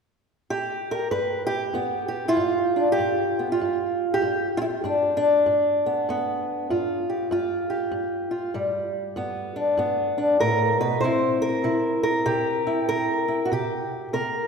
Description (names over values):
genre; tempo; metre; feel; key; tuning
acoustic country blues, solo or duo; 97 BPM; 4/4; swing 62% on 8ths; G mixolydian; A4 = 440 Hz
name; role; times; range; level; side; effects
fingerpicked old ladder-braced acoustic guitar; solo; 0.5-14.5 s; G2 to C5; -22 LUFS; equal; none
room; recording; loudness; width
wet concert hall reverb, RT60 2.4 s; heard from further back in the room; -22 LUFS; side -5 dB against mid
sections
0.0-1.1 A section; 1.1-14.5 B section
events
none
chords
0.0 N.C.; 1.1 G7; 11.0 C7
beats
0.52 | 1.14 1.75 2.37 2.99 | 3.61 4.23 4.84 5.46 | 6.08 6.70 7.32 7.93 | 8.55 9.17 9.79 10.41 | 11.02 11.64 12.26 12.88 | 13.50 14.12